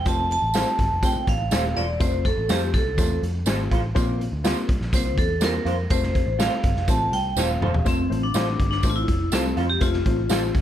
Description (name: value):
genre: uptempo 1960s-style soul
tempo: 123 BPM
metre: 4/4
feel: straight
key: F major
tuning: A4 = 440 Hz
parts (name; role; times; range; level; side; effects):
- vibraphone with hard mallets; melody; 0.0-10.6 s; C4 to A5; -26 LUFS; equal; none
- vintage muted picked electric bass; bass; 0.0-10.6 s; Eb1 to F2; -26 LUFS; equal; none
- dark upright piano; accompaniment; 0.1-10.6 s; A3 to C5; -29 LUFS; left 3 dB; none
- raw garage drum kit; drums; 0.1-10.6 s; hi-hat, kick drum, snare drum, toms; -24 LUFS; equal; none
- tambourine; percussion; 0.1-10.4 s; none; -34 LUFS; right 8 dB; none
- electric guitar through a small old amp; stabs; 0.5-10.4 s; F4 to C5; -30 LUFS; right 3 dB; analog chorus
room: little or no reverb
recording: none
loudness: -20 LUFS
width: side -11 dB against mid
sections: 0.0-7.9 A section; 7.9-10.6 B section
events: vibraphone solo 0.0-7.9; drum fill 7.4-7.9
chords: 0.1 F; 4.0 Bbsus2; 5.9 F